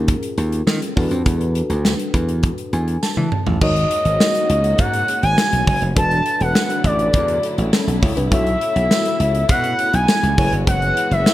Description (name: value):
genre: early-eighties boogie funk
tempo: 102 BPM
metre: 4/4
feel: straight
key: G# phrygian from 3.6 s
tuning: A4 = 439 Hz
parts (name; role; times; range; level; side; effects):
- FM electric piano with tremolo; accompaniment; 0.0-11.3 s; C#4 to A5; -26 LUFS; left 2 dB; none
- slap bass; bass; 0.0-11.2 s; E1 to E3; -20 LUFS; equal; none
- modern studio drum kit; drums; 0.1-11.3 s; crash cymbal, hi-hat, kick drum, snare drum, toms; -19 LUFS; equal; gated reverb
- tambourine; percussion; 0.7-11.3 s; none; -29 LUFS; right 11 dB; none
- expressive portamento lead; melody; 3.6-11.3 s; D5 to A5; -19 LUFS; equal; chorus, slapback echo
- dark studio string section; sustained chords; 3.6-11.3 s; C#3 to F#4; -29 LUFS; equal; none
room: studio reverb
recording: none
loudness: -15 LUFS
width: side -14 dB against mid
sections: 0.0-3.6 A section; 3.6-11.3 B section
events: FM electric piano fill 2.4-3.6; drum fill 3.0-3.6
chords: 0.0 D#9sus4; 1.0 E9sus4; 3.6 G#9sus4; 6.0 E9sus4; 8.3 B9sus4; 10.4 F#9sus4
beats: 0.08 0.67 | 1.26 1.85 2.44 3.02 | 3.61 4.20 4.79 5.38 | 5.97 6.55 7.14 7.73 | 8.32 8.91 9.49 10.08 | 10.67 11.26